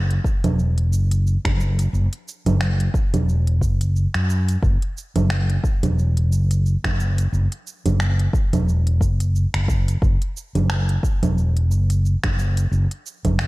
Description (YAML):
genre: organic downtempo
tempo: 89 BPM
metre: 4/4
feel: swing 58% on 16ths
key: unclear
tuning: A4 = 440 Hz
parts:
  - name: fretless electric bass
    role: bass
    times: 0.0-13.5 s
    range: E1 to F#2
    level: -18 LUFS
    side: equal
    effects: sidechain pumping
  - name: organic electronic drum kit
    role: drums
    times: 0.1-13.5 s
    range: cabasa, congas, finger snaps, hi-hat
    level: -26 LUFS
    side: right 2 dB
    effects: overdrive
  - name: electronic kick drum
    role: drums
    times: 0.2-13.4 s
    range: none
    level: -21 LUFS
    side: equal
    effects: none
room: digital ambience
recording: dark, warm production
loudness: -18 LUFS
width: side -20 dB against mid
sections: 0.0-13.5 A section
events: kick drops out 4.0-4.6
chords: none